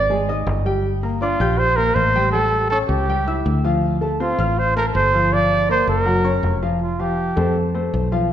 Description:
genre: jazz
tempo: 161 BPM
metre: 4/4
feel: straight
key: F major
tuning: A4 = 436 Hz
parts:
  - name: breathy trumpet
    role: melody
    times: 0.0-7.6 s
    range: F4 to D5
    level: -20 LUFS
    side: right 2 dB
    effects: none
  - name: warm grand piano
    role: accompaniment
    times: 0.0-8.3 s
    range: F3 to G6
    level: -22 LUFS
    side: left 1 dB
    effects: none
  - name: fingered electric bass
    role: bass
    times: 0.0-8.3 s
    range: F1 to F2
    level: -22 LUFS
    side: left 1 dB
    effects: none
room: moderate scoring stage reverb, RT60 1.5 s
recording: recorded in a church or concert hall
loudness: -17 LUFS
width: side -10 dB against mid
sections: 0.0-6.8 A section; 6.8-8.3 B section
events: trumpet solo 6.8-8.3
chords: 0.1 Ab5; 0.8 Gm9; 2.3 A7; 3.8 Dm7; 5.3 Gm7; 6.1 Gb; 6.8 Fadd9

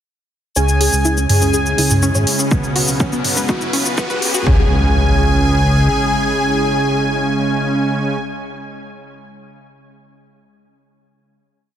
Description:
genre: melodic techno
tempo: 123 BPM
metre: 4/4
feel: straight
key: C# minor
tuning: A4 = 439 Hz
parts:
  - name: soft supersaw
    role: melody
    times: 0.6-8.2 s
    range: G#4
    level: -24 LUFS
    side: left 1 dB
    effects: phaser, sidechain pumping, low-pass filter, tape echo
  - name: airy dreamy lead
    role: second line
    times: 0.6-8.2 s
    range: G#5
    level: -23 LUFS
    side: equal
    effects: chorus, sidechain pumping, tape echo
  - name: evolving wavetable pad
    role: sustained chords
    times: 1.3-8.2 s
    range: C#3 to B4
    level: -25 LUFS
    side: left 1 dB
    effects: phaser, built-in reverb, sidechain pumping
  - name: analog pluck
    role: arpeggios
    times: 0.6-4.7 s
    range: B3 to C#5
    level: -25 LUFS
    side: left 1 dB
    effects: chorus, sidechain pumping, tape echo
  - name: analog synth brass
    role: stabs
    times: 0.6-8.2 s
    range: B2 to C#4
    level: -21 LUFS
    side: right 2 dB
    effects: chorus, sidechain pumping, tape echo
  - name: fat analog bass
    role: bass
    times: 0.6-5.9 s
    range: G#1 to C#2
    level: -18 LUFS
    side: equal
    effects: sidechain pumping
  - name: techno drum kit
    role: drums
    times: 0.6-4.4 s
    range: hi-hat, shaker, toms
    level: -18 LUFS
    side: equal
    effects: overdrive, sidechain pumping on perc, studio reverb, sidechain pumping on hats, sidechain pumping on toms
  - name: riser and impact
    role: sound effects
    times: 2.4-8.2 s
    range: none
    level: -24 LUFS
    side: equal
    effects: none
  - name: electronic kick drum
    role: drums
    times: 2.5-4.6 s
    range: none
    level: -16 LUFS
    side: equal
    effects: overdrive, studio reverb
room: light reverb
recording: dense, heavily limited modern master, high-pass filter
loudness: -13 LUFS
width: side -10 dB against mid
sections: 0.6-4.5 build; 4.5-8.4 final chord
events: build-up 0.6-4.5; filter sweep on synth pluck 0.6-4.5; filter sweep 0.6-4.5; riser 2.4-4.5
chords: 0.6 C#m; 2.5 Bsus2/C#; 4.5 C#m

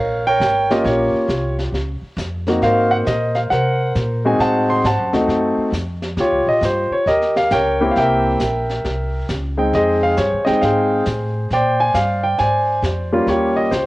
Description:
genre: jazz piano trio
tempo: 135 BPM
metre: 4/4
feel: swing 65% on 8ths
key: Eb mixolydian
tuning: A4 = 440 Hz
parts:
  - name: warm concert grand piano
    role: melody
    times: 0.0-13.9 s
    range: G3 to C6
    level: -16 LUFS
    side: equal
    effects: cassette tape
  - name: upright bass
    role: bass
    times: 0.0-13.9 s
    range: Ab1 to C3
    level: -23 LUFS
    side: equal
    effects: none
  - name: jazz brush drum kit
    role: drums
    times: 0.4-13.9 s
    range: brushed snare drum, hi-hat, snare drum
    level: -29 LUFS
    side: equal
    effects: cassette tape
room: moderate spring reverb, RT60 1.4 s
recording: home recording on cassette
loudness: -15 LUFS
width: side -18 dB against mid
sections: 0.0-13.9 A section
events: none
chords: 0.0 Eb9 (rootless); 2.6 Ab9; 4.4 Adim7; 6.2 Eb9; 7.9 C7; 9.7 Fm7; 11.5 Bb9; 13.3 Eb9

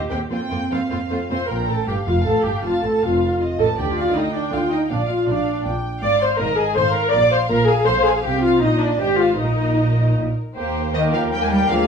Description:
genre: quick classical-period movement for string orchestra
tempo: 149-164 BPM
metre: 3/4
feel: rubato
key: Bb major, Eb major from 6.0 s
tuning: A4 = 441 Hz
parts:
  - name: rich chamber cello section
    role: bass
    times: 0.0-11.9 s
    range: F2 to G4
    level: -25 LUFS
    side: right 2 dB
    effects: none
  - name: clear studio violin section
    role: melody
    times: 0.1-11.9 s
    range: Bb4 to A5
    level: -28 LUFS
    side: left 2 dB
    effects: none
  - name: clear symphonic violin section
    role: second line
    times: 0.1-11.9 s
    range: Bb3 to D6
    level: -27 LUFS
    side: equal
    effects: none
  - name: clear chamber viola section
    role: accompaniment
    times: 0.1-11.9 s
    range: A3 to D5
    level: -20 LUFS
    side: left 1 dB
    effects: none
  - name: rich chamber double bass section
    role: bass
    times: 0.1-11.9 s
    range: F1 to F2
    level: -25 LUFS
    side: right 2 dB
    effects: none
room: moderate large studio reverb, RT60 1.0 s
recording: small room ambience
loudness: -17 LUFS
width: side -6 dB against mid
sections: 0.0-1.5 A section; 1.5-10.6 A section; 10.6-11.9 B section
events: none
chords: 0.3 Fsus4; 1.1 F; 1.5 Bb5; 2.6 F7; 3.8 Ebmaj9/D; 4.9 Bb; 6.0 Fm7/Ab; 7.1 Bb5; 8.2 Cm; 9.0 Fm/Ab; 9.4 Eb5/Bb; 10.2 N.C.; 10.6 Eb

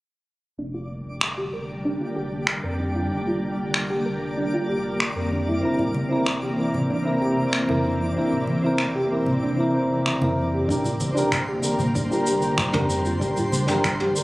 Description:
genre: sunset chillout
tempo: 95 BPM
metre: 4/4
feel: straight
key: unclear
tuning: A4 = 440 Hz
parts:
  - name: shimmering ambient pad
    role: sustained chords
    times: 0.9-14.2 s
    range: C3 to Bb3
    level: -27 LUFS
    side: equal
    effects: chorus, built-in reverb
  - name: soft round pluck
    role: arpeggios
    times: 0.6-14.2 s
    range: D4 to C5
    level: -29 LUFS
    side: equal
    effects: lush chorus, ping-pong delay
  - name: warm sub bass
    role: bass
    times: 0.6-14.2 s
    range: F1 to F2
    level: -33 LUFS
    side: equal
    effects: none
  - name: twinkling granular texture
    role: texture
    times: 0.8-14.2 s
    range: C5 to D6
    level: -36 LUFS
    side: equal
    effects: built-in reverb
  - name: vintage brush drum kit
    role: drums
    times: 1.2-14.2 s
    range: finger snaps, shaker, toms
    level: -26 LUFS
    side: equal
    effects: none
  - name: soft electric-piano-like synth keys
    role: accompaniment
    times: 5.6-14.2 s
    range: C4 to Bb4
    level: -24 LUFS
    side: equal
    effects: chorus, auto-pan, ping-pong delay
  - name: congas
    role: percussion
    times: 5.8-13.7 s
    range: none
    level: -28 LUFS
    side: equal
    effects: none
  - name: electronic kick drum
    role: drums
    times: 10.7-14.0 s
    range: none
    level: -28 LUFS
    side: equal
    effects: overdrive
room: moderate plate reverb, RT60 2.6 s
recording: recorded on a phone in the room, club reverb, compression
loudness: -21 LUFS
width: side -19 dB against mid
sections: 0.6-10.7 A section; 10.7-14.2 B section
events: filter sweep on synth arpeggio sound 0.6-10.7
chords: 0.6 Bb6/F; 5.3 Gm11/F

